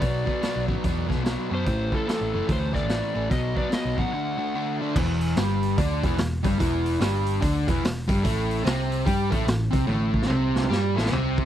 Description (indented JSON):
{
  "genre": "blues rock power trio and southern rock",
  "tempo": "146 BPM",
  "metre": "4/4",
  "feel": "swing 62% on 8ths",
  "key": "E minor",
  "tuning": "A4 = 440 Hz",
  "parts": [
    { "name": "overdriven slide guitar", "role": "melody", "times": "0.0-4.8 s", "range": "A4 to F#5", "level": "-31 LUFS", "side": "left 1 dB", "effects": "tape echo" },
    { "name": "overdriven semi-hollow guitar", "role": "riff", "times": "0.0-11.5 s", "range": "E2 to G4", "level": "-26 LUFS", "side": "equal", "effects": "none" },
    { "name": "hollow-body short-scale picked electric bass", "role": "bass", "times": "0.0-11.5 s", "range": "E1 to G2", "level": "-27 LUFS", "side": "equal", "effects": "none" },
    { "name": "raw garage drum kit", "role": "drums", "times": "0.0-11.5 s", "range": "crash cymbal, hi-hat, kick drum, snare drum, toms", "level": "-27 LUFS", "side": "equal", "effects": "none" }
  ],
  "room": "little or no reverb",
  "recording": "dry, close 1970s-style studio recording",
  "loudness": "-22 LUFS",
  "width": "side -11 dB against mid",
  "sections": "0.0-5.0 A section; 5.0-11.5 B section",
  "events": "break 4.1-5.0; drum fill 9.9-11.5",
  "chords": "0.0 Bm; 1.7 A5; 3.3 B5; 4.1 D; 5.0 Em; 8.2 Am7"
}